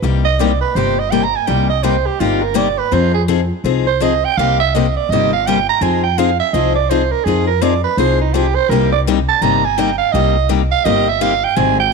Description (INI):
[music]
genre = acoustic string swing (jazz manouche)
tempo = 166 BPM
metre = 4/4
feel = swing 63% on 8ths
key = C minor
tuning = A4 = 441 Hz
[part]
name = picked steel-string acoustic guitar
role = accompaniment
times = 0.0-11.8 s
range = C3 to Ab4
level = -18 LUFS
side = left 12 dB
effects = none
[part]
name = upright bass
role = bass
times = 0.0-11.9 s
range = G1 to F2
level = -19 LUFS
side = equal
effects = none
[part]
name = growling soprano saxophone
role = second line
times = 0.2-11.9 s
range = Eb4 to Bb5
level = -16 LUFS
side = right 12 dB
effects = none
[sound]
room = moderate echo chamber reverb, RT60 1.9 s, studio ambience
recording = 1960s-style stereo with parts hard left and right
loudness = -13 LUFS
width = side -4 dB against mid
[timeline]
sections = 0.0-11.9 A section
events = soprano saxophone solo 0.0-11.9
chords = 0.0 Cm7; 2.9 Fm7; 4.4 Cm7; 5.8 Fm7; 8.7 Cm7